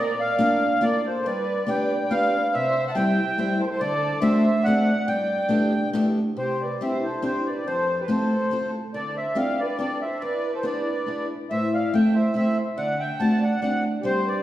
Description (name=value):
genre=musette waltz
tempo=141 BPM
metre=3/4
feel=swing 54% on 8ths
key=G major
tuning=A4 = 439 Hz
part: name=accordion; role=melody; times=0.0-14.4 s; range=B4 to A5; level=-26 LUFS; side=equal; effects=light tremolo tuning
part: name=dark violin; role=second line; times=0.0-14.4 s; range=G4 to F#5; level=-30 LUFS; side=right 2 dB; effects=none
part: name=picked steel-string acoustic guitar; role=accompaniment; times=0.0-14.4 s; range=E2 to D5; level=-24 LUFS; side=left 1 dB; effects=none
room=wet recital hall reverb, RT60 1.8 s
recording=heard from further back in the room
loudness=-21 LUFS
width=side -14 dB against mid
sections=0.0-6.4 A section; 6.4-14.4 B section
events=none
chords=0.0 Bb; 1.3 G7; 2.5 C; 3.8 D7; 5.1 Gadd9; 6.4 Cadd9; 7.7 F; 8.9 Dm7; 10.2 E7; 11.5 Am; 12.8 D7